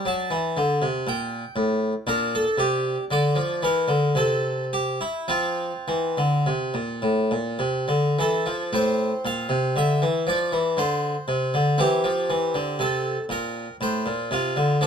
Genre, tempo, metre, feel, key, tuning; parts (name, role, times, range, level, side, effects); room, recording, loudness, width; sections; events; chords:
classical, baroque-style suite movement for harpsichord; 50-61 BPM; 3/4; rubato; F major; A4 = 436 Hz
harpsichord; solo; 0.0-14.9 s; A2 to A5; -21 LUFS; equal
moderate studio reverb, RT60 0.6 s; dark, warm production; -21 LUFS; side -7 dB against mid
0.0-8.7 A section; 8.7-14.9 B section
0.0 D7; 1.1 Gm/Bb; 2.1 Bb69; 4.2 N.C.; 5.3 F/A; 11.8 C; 13.8 F/A